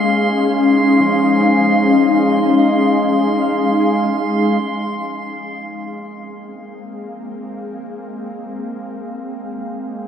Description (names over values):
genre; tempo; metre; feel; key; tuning
ambient; free time; none; none; unclear; A4 = 439 Hz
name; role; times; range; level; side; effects
ethereal airy pad; sustained chords; 0.0-10.1 s; Ab3 to F5; -16 LUFS; left 1 dB; ensemble chorus, built-in reverb
concert harp; arpeggios; 0.0-7.2 s; F3 to Ab5; -32 LUFS; left 2 dB; none
drifting glass-harmonics texture; texture; 0.0-4.6 s; C6; -22 LUFS; right 3 dB; chorus, built-in reverb
room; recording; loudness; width
wet cathedral reverb, RT60 5.0 s; none; -13 LUFS; side -8 dB against mid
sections
0.0-4.6 A section; 4.6-10.1 B section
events
none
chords
0.0 Eb9sus4; 4.6 Ab69